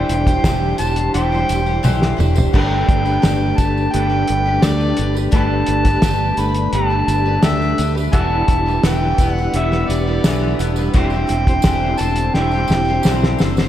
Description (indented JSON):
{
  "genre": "folk rock and heartland rock",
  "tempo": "86 BPM",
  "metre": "4/4",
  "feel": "straight",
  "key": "G major",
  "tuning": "A4 = 441 Hz",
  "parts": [
    { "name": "overdriven harmonica", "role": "melody", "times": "0.0-13.4 s", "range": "D5 to B5", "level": "-21 LUFS", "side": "equal", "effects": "analog delay" },
    { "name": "picked twelve-string acoustic guitar", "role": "accompaniment", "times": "0.0-13.7 s", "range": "D3 to C5", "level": "-24 LUFS", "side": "left 4 dB", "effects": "lush chorus, slapback echo" },
    { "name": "mellow tonewheel organ", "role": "sustained chords", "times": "0.0-13.7 s", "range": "D4 to C5", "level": "-29 LUFS", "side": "right 2 dB", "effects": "none" },
    { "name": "electric guitar through a small old amp", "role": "riff", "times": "0.0-13.7 s", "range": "D3 to C5", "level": "-23 LUFS", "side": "right 2 dB", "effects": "ensemble chorus, slapback echo" },
    { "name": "fingered electric bass", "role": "bass", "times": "0.0-13.7 s", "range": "E1 to D2", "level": "-20 LUFS", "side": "equal", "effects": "none" },
    { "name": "cloth-damped thuddy drum kit", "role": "drums", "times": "0.1-13.7 s", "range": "crash cymbal, hi-hat, kick drum, snare drum, toms", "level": "-18 LUFS", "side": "equal", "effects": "none" },
    { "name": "tambourine", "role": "percussion", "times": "0.1-13.7 s", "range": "none", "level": "-38 LUFS", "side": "right 10 dB", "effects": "none" }
  ],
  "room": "moderate scoring stage reverb, RT60 2.0 s, small room ambience",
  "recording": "big arena sound",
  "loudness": "-14 LUFS",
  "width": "side -11 dB against mid",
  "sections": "0.0-13.7 A section",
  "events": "drum fill 1.8-2.5, 12.4-13.7",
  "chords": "0.0 Cadd9/E; 2.5 Gadd9; 8.1 Em7; 11.0 Cadd9/E"
}